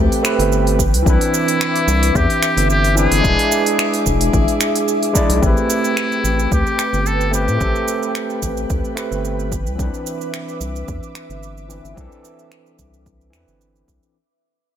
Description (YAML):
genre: sunset chillout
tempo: 110 BPM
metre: 4/4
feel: swing 54% on 16ths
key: A minor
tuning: A4 = 442 Hz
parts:
  - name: overdriven tine electric piano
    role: accompaniment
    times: 0.0-14.2 s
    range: E3 to D5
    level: -21 LUFS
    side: moving between left 5 dB and right 4 dB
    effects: auto-pan, ping-pong delay
  - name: ethereal airy pad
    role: sustained chords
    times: 0.0-14.1 s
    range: G#4 to D6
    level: -25 LUFS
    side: equal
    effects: ensemble chorus, built-in reverb
  - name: round analog bass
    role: bass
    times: 0.0-14.0 s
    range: E1 to A2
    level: -19 LUFS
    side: equal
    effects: none
  - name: deep house drum kit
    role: drums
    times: 0.1-14.1 s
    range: finger snaps, hi-hat, shaker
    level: -24 LUFS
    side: right 3 dB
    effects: none
  - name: electronic kick drum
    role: drums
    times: 0.8-14.0 s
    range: none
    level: -20 LUFS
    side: equal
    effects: none
  - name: trumpet with metal mute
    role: melody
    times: 1.1-8.4 s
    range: E4 to A4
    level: -21 LUFS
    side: left 1 dB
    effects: digital delay
room: light reverb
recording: none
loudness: -15 LUFS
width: side -9 dB against mid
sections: 0.0-5.4 A section; 5.4-14.2 B section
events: fade-out 5.4-14.2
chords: 0.0 Am9; 0.8 Cmaj9; 3.2 E7; 5.4 Am9; 9.5 Cmaj9